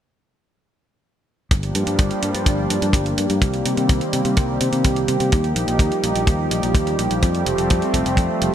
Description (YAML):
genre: italo disco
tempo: 126 BPM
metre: 4/4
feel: straight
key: G minor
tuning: A4 = 439 Hz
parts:
  - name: warm analog pad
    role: sustained chords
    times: 1.5-8.5 s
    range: Eb3 to G4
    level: -21 LUFS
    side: right 1 dB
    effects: chorus
  - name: fingered electric bass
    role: bass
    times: 1.5-8.5 s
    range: F1 to C3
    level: -23 LUFS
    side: left 1 dB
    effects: none
  - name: electronic hi-hat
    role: drums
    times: 1.5-8.5 s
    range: none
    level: -28 LUFS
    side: right 3 dB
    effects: overdrive
  - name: kick drum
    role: drums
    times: 1.5-8.3 s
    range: none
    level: -17 LUFS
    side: equal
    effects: none
room: moderate lush hall reverb, RT60 2.0 s, studio reverb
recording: bright 1980s-style digital production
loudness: -17 LUFS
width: side -10 dB against mid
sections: 1.5-8.5 A section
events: none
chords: 1.5 Gm7; 3.4 Cm7; 5.3 Ebadd9; 7.2 Fadd9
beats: | 1.51 1.99 2.46 2.94 | 3.42 3.89 4.37 4.85 | 5.32 5.80 6.28 6.75 | 7.23 7.70 8.18